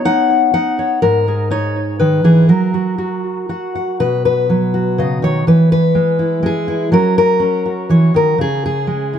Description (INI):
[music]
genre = folk, solo fingerstyle acoustic guitar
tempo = 122 BPM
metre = 3/4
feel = rubato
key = B major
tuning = A4 = 439 Hz
[part]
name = fingerpicked steel-string acoustic guitar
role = solo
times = 0.0-9.2 s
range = G#2 to F#5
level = -12 LUFS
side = equal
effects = tape echo
[sound]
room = light reverb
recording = dark, warm production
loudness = -12 LUFS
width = side -9 dB against mid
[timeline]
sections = 0.0-4.0 A section; 4.0-9.2 B section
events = none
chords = 0.0 Badd9; 1.0 G#madd9; 2.5 N.C.; 4.0 B; 5.5 E; 6.9 F#; 8.4 C#5